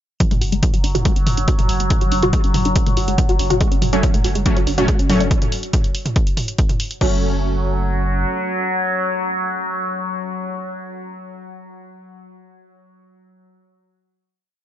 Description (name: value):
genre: driving peak-time techno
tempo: 141 BPM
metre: 4/4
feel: straight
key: F# minor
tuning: A4 = 441 Hz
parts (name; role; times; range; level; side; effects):
- resonant blip pluck; riff; 0.2-7.2 s; F#3 to F#4; -23 LUFS; right 1 dB; phaser, tube saturation, sidechain pumping, tape echo
- overtone-sweeping drone; drone; 0.8-11.2 s; F#3; -24 LUFS; equal; chorus, built-in reverb, phaser, sidechain pumping
- electronic kick drum; drums; 0.2-7.1 s; none; -18 LUFS; equal; none
- punchy analog drum machine; drums; 0.2-7.1 s; crash cymbal, hi-hat, toms; -25 LUFS; right 1 dB; none
- saturated sub bass; bass; 0.3-8.2 s; F#1; -22 LUFS; equal; tube saturation, sidechain pumping, low-pass filter
- rave stab; stabs; 3.9-11.4 s; F#3 to C#4; -24 LUFS; equal; chorus, built-in reverb, sidechain pumping, tape echo
room: little or no reverb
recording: nothing above 7.5 kHz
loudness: -16 LUFS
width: side -11 dB against mid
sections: 0.2-7.0 groove; 7.0-10.4 final chord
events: filter sweep on synth arpeggio sound 0.2-5.3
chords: 0.2 F#m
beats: | 0.20 0.63 1.05 1.48 | 1.91 2.33 2.76 3.18 | 3.61 4.03 4.46 4.88 | 5.31 5.74 6.16 6.59 | 7.01 7.44 7.86 8.29 | 8.71 9.14 9.56 9.99